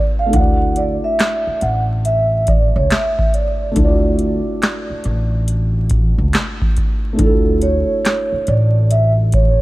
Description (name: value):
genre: lo-fi hip hop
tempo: 70 BPM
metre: 4/4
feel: swing 64% on 16ths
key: D major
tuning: A4 = 440 Hz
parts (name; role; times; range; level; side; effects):
- vibraphone with soft mallets; melody; 0.0-9.6 s; A4 to F#5; -19 LUFS; right 2 dB; none
- felt-muted upright piano; accompaniment; 0.0-9.6 s; A3 to D5; -23 LUFS; left 1 dB; none
- upright bass; bass; 0.3-9.6 s; A1 to D2; -17 LUFS; equal; none
- booming analog drum machine; drums; 0.3-9.6 s; handclaps, hi-hat, kick drum, snare drum; -17 LUFS; equal; none
room: small room ambience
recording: vinyl crackle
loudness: -14 LUFS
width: side -18 dB against mid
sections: 0.0-9.6 A section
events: none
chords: 0.3 Dadd9